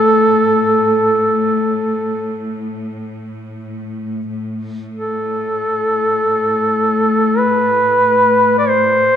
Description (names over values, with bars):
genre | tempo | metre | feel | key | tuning
caucasian folk, Caucasian lament | free time | none | none | A minor | A4 = 440 Hz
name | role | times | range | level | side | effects
mellow duduk | melody | 0.0-9.2 s | A4 to D5 | -13 LUFS | equal | none
bright studio cello section | drone | 0.0-9.2 s | A2 | -21 LUFS | left 2 dB | none
room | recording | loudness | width
wet church reverb, RT60 3.6 s | minimal, uncompressed stereo recording | -13 LUFS | side -9 dB against mid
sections
0.0-4.3 A section; 4.3-9.2 A section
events
none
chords
none